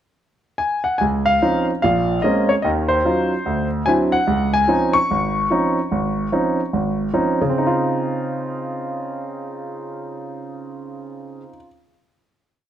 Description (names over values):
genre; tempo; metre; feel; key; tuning
solo jazz; 147 BPM; 4/4; swing 65% on 8ths; Db major; A4 = 440 Hz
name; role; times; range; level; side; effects
warm grand piano; solo; 0.6-11.7 s; Ab1 to Db6; -18 LUFS; equal; none
room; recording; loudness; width
moderate large studio reverb, RT60 1.3 s; close, detailed microphones; -17 LUFS; side -10 dB against mid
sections
0.0-1.0 pickup bar; 1.0-7.5 A section; 7.5-10.8 final chord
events
none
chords
0.0 N.C.; 1.0 Dbmaj9; 1.8 Bbm9; 2.6 Ebm9; 3.5 D9; 4.3 Dbmaj9